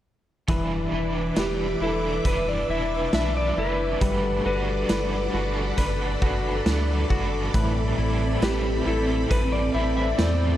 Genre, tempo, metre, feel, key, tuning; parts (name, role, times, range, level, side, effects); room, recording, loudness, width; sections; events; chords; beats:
dream pop; 68 BPM; 4/4; straight; E minor; A4 = 440 Hz
overdriven electric guitar; accompaniment; 0.5-10.6 s; A2 to B4; -31 LUFS; right 3 dB; tremolo, analog chorus
string machine, violins; sustained chords; 0.5-10.6 s; C4 to D6; -30 LUFS; equal; ensemble chorus
semi-hollow electric guitar; arpeggios; 0.5-10.6 s; A2 to B4; -30 LUFS; left 3 dB; lush chorus, slapback echo
round analog bass; bass; 0.5-10.6 s; E1 to E2; -28 LUFS; equal
raw garage drum kit; drums; 0.5-10.4 s; hi-hat, kick drum, snare drum; -28 LUFS; equal
clean lap steel guitar; melody; 1.4-10.6 s; G4 to E5; -29 LUFS; left 1 dB; slapback echo
light reverb, small room ambience; dark, warm production; -22 LUFS; side -12 dB against mid
0.5-10.6 A section
0.5 Em7; 4.0 Gmaj9; 7.5 Am9
| 0.48 1.37 2.25 3.13 | 4.01 4.90 5.78 6.66 | 7.54 8.43 9.31 10.19